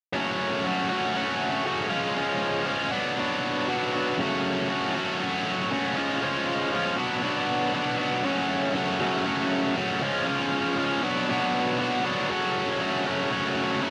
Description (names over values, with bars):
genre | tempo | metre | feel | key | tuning
rock | 118 BPM | 4/4 | straight | F# harmonic minor | A4 = 440 Hz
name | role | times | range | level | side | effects
tight distorted guitar | riff | 0.1-13.9 s | F#2 to F#4 | -26 LUFS | equal | distortion
room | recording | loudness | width
light reverb | dry, close 1970s-style studio recording | -26 LUFS | mono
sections
0.1-8.2 A section; 8.2-13.9 B section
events
none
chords
0.1 F#m; 1.9 C#; 2.9 Bm; 4.2 F#m; 6.0 C#; 7.0 Bm; 8.2 F#m; 10.0 C#; 11.0 Bm; 12.3 F#m